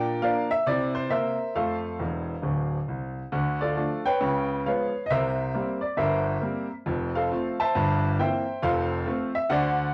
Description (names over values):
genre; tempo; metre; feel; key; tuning
jazz, stride piano; 136 BPM; 4/4; swing 65% on 8ths; F major; A4 = 440 Hz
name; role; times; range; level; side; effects
clear grand piano; solo; 0.0-9.9 s; D1 to A5; -27 LUFS; equal; cassette tape
room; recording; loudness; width
wet small room reverb, RT60 0.5 s; home recording on cassette; -27 LUFS; mono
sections
0.0-3.3 A section; 3.3-9.9 B section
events
grand piano fill 2.0-3.3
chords
0.0 Bb; 0.7 C7; 1.6 F; 3.3 Dm; 4.2 Db7; 5.1 C7; 6.9 F; 7.7 C7/G; 8.6 F